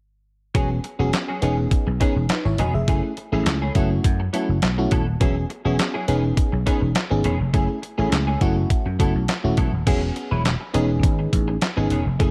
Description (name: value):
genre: early-eighties boogie funk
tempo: 103 BPM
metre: 4/4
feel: straight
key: E major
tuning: A4 = 440 Hz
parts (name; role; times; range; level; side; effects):
- FM electric piano; accompaniment; 0.5-12.3 s; A3 to E5; -28 LUFS; equal; chorus
- clean electric guitar; riff; 0.5-12.3 s; D#3 to B4; -32 LUFS; equal; ensemble chorus
- vintage slap bass; bass; 0.5-12.3 s; D#1 to F#2; -25 LUFS; equal; none
- detuned 8-bit digital drum machine; drums; 0.5-12.3 s; crash cymbal, handclaps, hi-hat, kick drum, snare drum; -25 LUFS; equal; none
room: light reverb, digital ambience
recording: dark, warm production, faint mains hum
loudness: -21 LUFS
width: mono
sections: 0.5-9.9 A section; 9.9-12.3 B section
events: none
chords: 0.5 E69; 1.4 Emaj13; 2.9 F#m9; 3.8 B7sus4/F#; 5.2 E69; 6.1 C#m9/E; 7.5 F#m9; 8.4 B7sus4/F#; 9.9 E69; 10.7 Amaj9#11/E